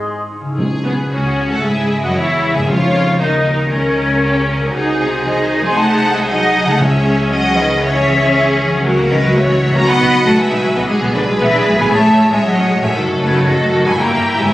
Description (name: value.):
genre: classical, dramatic, fast romantic movement for symphony orchestra.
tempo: 116 BPM.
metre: 4/4.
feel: straight.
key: C# minor.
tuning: A4 = 440 Hz.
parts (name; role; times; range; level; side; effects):
bright large flute ensemble; second line; 0.0-14.5 s; B4 to C#6; -19 LUFS; left 1 dB; none.
concert harp; arpeggios; 0.0-14.5 s; F#2 to D#5; -22 LUFS; left 1 dB; none.
rich studio violin section; melody; 0.6-14.5 s; E4 to D#5; -23 LUFS; left 1 dB; none.
timpani; percussion; 0.6-3.4, 6.8-7.5 s; C#3; -22 LUFS; equal; none.
warm symphonic violin section; second line; 0.8-14.5 s; G#4 to A#5; -21 LUFS; left 1 dB; none.
rich symphonic viola section; accompaniment; 0.8-14.5 s; D#3 to A4; -17 LUFS; equal; none.
rich symphonic cello section; bass; 0.8-14.5 s; B2 to C#4; -19 LUFS; equal; none.
rich symphonic double bass section; bass; 0.8-14.4 s; F#1 to A2; -22 LUFS; equal; none.
room: wet concert hall reverb, RT60 2.3 s.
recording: recorded on a phone in the room, studio ambience.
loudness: -12 LUFS.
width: side -16 dB against mid.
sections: 0.6-14.5 A section.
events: none.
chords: 0.0 G#; 0.6 C#m; 2.7 D#7; 4.7 G#7/B#; 6.8 C#m; 8.9 F#7/C#; 9.9 B; 10.9 E7/B; 11.9 Amaj7; 13.0 D#dim/F#; 14.0 Gdim7.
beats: 0.05 | 0.58 1.11 1.64 2.16 | 2.68 3.20 3.72 4.23 | 4.75 5.26 5.78 6.29 | 6.81 7.32 7.83 8.35 | 8.85 9.36 9.87 10.38 | 10.89 11.40 11.92 12.44 | 12.95 13.47 13.99 14.52.